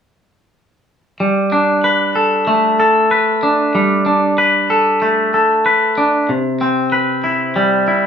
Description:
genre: rock.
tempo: 94 BPM.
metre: 4/4.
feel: straight.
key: G major.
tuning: A4 = 440 Hz.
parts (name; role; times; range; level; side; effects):
twangy electric guitar; arpeggios; 1.2-8.1 s; C3 to B4; -12 LUFS; equal; none.
room: wet studio reverb, RT60 0.6 s.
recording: band playing live in one room.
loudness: -12 LUFS.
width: side -7 dB against mid.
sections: 1.2-8.1 A section.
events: none.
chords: 1.2 Gadd9; 6.3 Cmaj7.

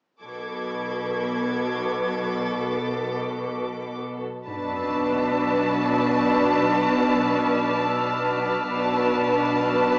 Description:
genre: cinematic, suspense film score.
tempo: free time.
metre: none.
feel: none.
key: B minor.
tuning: A4 = 440 Hz.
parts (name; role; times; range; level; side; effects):
rich studio violin section; melody; 0.2-10.0 s; A4 to A5; -31 LUFS; equal; none.
rich studio cello section; bass; 0.2-10.0 s; B2; -29 LUFS; equal; none.
warm studio double bass section; bass; 0.2-10.0 s; B1; -35 LUFS; equal; none.
warm studio violin section; texture; 0.2-10.0 s; D6 to G#6; -35 LUFS; equal; none.
rich studio violin section; second line; 4.5-10.0 s; D4 to B4; -26 LUFS; equal; none.
sub drop; sound effects; 4.5-8.7 s; none; -47 LUFS; equal; none.
room: moderate scoring stage reverb, RT60 1.6 s.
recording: worn, warbling old tape, cassette tape, warbly pitch drift, small speaker sound.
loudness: -24 LUFS.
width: mono.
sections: 0.2-4.5 A section; 4.5-10.0 B section.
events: impact 4.5-8.7.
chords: 0.2 Bm7.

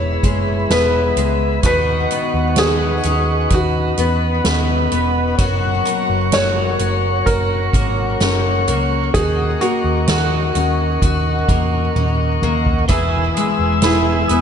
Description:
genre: dream pop.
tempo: 64 BPM.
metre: 4/4.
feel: straight.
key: E lydian.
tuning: A4 = 440 Hz.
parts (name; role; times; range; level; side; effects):
felt-muted upright piano; melody; 0.0-14.4 s; E4 to C#5; -22 LUFS; right 1 dB; ping-pong delay.
mellow tonewheel organ; sustained chords; 0.0-14.4 s; G#4 to E6; -22 LUFS; equal; slow rotary speaker.
picked twelve-string acoustic guitar; arpeggios; 0.0-14.4 s; D#3 to B4; -21 LUFS; left 4 dB; wide subtle chorus, ping-pong delay.
hollow-body short-scale picked electric bass; bass; 0.0-14.4 s; E1 to E2; -20 LUFS; equal; none.
soft-mallet drum kit; drums; 0.2-14.4 s; hi-hat, kick drum, snare drum, toms; -21 LUFS; equal; none.
clean electric guitar; accompaniment; 12.9-14.4 s; E3 to G#4; -22 LUFS; right 2 dB; tremolo, analog chorus.
room: light reverb, small room ambience.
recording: nothing above 10.8 kHz.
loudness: -14 LUFS.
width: side -8 dB against mid.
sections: 0.0-14.4 A section.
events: drum fill 12.0-12.9.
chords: 0.0 E; 1.6 Badd9/D#; 5.4 F#; 9.1 D#m7; 12.9 E.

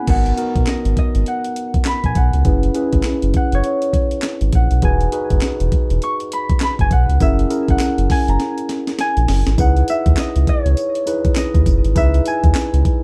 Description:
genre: R&B, new jack swing.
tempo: 101 BPM.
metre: 4/4.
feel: swing 61% on 16ths.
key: unclear.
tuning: A4 = 440 Hz.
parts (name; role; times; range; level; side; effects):
Celtic harp; melody; 0.0-13.0 s; C#5 to C#6; -25 LUFS; equal; plate reverb, digital delay.
mellow tine electric piano; accompaniment; 0.0-13.0 s; B3 to B4; -25 LUFS; equal; none.
round analog bass; bass; 0.1-12.8 s; E1 to D#2; -18 LUFS; equal; none.
breakbeat sampler-style drum kit; drums; 0.1-13.0 s; crash cymbal, handclaps, hi-hat, kick drum, snare drum, tambourine; -20 LUFS; equal; none.
room: little or no reverb.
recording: dark, warm production.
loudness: -17 LUFS.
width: mono.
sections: 0.1-9.6 A section; 9.6-13.0 B section.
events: drum fill 8.4-9.6.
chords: 0.1 G#m7; 2.5 F#7sus4; 4.8 Emaj7; 7.2 F#7; 9.6 C#m7.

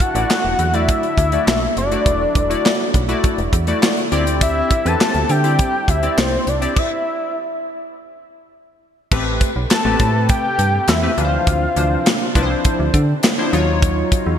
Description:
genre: early-eighties boogie funk.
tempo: 102 BPM.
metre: 4/4.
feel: straight.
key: unclear.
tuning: A4 = 440 Hz.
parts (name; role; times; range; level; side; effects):
fat analog lead; melody; 0.0-12.4 s; C5 to A5; -20 LUFS; left 2 dB; digital delay.
lush unison pad; sustained chords; 0.0-14.4 s; C3 to B4; -28 LUFS; right 2 dB; chorus, phaser.
tight funk drum kit; drums; 0.0-14.3 s; crash cymbal, handclaps, hi-hat, kick drum, snare drum; -18 LUFS; equal; gated reverb.
funky polysynth comp; accompaniment; 0.1-14.4 s; E3 to D5; -22 LUFS; left 2 dB; chorus.
metallic FM bass; bass; 0.1-14.4 s; E1 to D3; -20 LUFS; right 1 dB; none.
room: moderate lush hall reverb, RT60 2.7 s.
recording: bright 1980s-style digital production.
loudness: -15 LUFS.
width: side -9 dB against mid.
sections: 0.0-9.1 A section; 9.1-14.4 B section.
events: stop 6.8-9.1.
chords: 0.0 E9sus4; 4.1 D9sus4; 9.1 Am9; 11.2 Dm9; 13.5 D#m9.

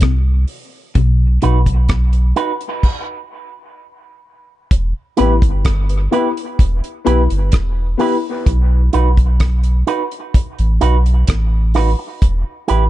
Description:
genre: dub reggae.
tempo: 64 BPM.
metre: 4/4.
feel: straight.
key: E harmonic minor.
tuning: A4 = 438 Hz.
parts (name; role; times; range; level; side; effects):
clean electric guitar; riff; 0.0-1.7 s; B2 to C3; -20 LUFS; left 5 dB; ensemble chorus, dub echo.
warm sub bass; bass; 0.0-12.9 s; E1 to C2; -14 LUFS; equal; none.
damped 70s drum kit; drums; 0.0-12.9 s; crash cymbal, hi-hat, kick drum, rim click; -15 LUFS; equal; none.
electric guitar with an envelope filter; accompaniment; 1.4-12.8 s; D#4 to B4; -21 LUFS; right 6 dB; dub echo.
dark concert grand piano; stabs; 5.2-8.1 s; B3 to B4; -20 LUFS; left 8 dB; high-pass filter, dub echo.
room: studio reverb.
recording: dark, warm production, nothing above 10.3 kHz.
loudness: -13 LUFS.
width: side -15 dB against mid.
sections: 0.0-4.7 A section; 4.7-12.9 A section.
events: break 0.0-4.7; stop 2.8-4.7.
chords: 0.0 N.C.; 4.7 Em; 8.5 B; 12.2 Em.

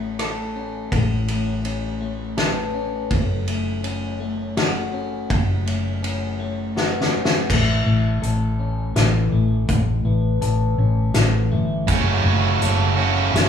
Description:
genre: post-rock.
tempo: 82 BPM.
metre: 3/4.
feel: straight.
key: unclear.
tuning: A4 = 441 Hz.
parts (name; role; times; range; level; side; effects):
electric guitar through a small old amp; arpeggios; 0.0-13.5 s; F#2 to A4; -26 LUFS; left 4 dB; none.
vibraphone with soft mallets; arpeggios; 0.0-13.5 s; A4 to E5; -32 LUFS; left 2 dB; none.
hollow-body short-scale fingered electric bass; bass; 0.0-13.5 s; F#1 to A1; -22 LUFS; equal; none.
loose indie drum kit; drums; 0.2-13.5 s; crash cymbal, hi-hat, kick drum, ride cymbal, rim click, snare drum; -24 LUFS; left 1 dB; none.
distorted electric guitar; riff; 11.9-13.5 s; F#2 to F#4; -19 LUFS; right 5 dB; overdrive.
room: moderate scoring stage reverb, RT60 1.5 s.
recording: recorded in a church or concert hall, small room ambience.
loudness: -18 LUFS.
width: side -8 dB against mid.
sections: 0.0-7.5 A section; 7.5-13.5 B section.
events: drum fill 6.8-7.5.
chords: 0.0 A; 3.1 F#m; 7.5 A; 11.9 F#m.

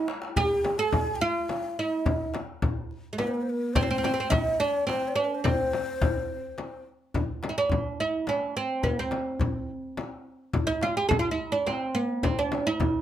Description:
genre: Arabic maqam ensemble.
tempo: 106 BPM.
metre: 3/4.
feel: straight.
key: C maqam huzam.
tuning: A4 = 440 Hz.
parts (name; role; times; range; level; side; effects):
oud; melody; 0.0-13.0 s; Ab3+50c to Ab4+50c; -27 LUFS; right 3 dB; none.
breathy mellow ney; second line; 0.0-6.8 s; Bb4+46c to A5+44c; -32 LUFS; left 3 dB; none.
darbuka; percussion; 0.1-12.9 s; none; -33 LUFS; left 1 dB; none.
frame drum; percussion; 0.4-12.9 s; none; -30 LUFS; left 2 dB; none.
room: light reverb.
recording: none.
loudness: -25 LUFS.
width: side -11 dB against mid.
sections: 0.0-7.1 A section; 7.1-13.0 B section.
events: drum fill 0.0-0.4.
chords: none.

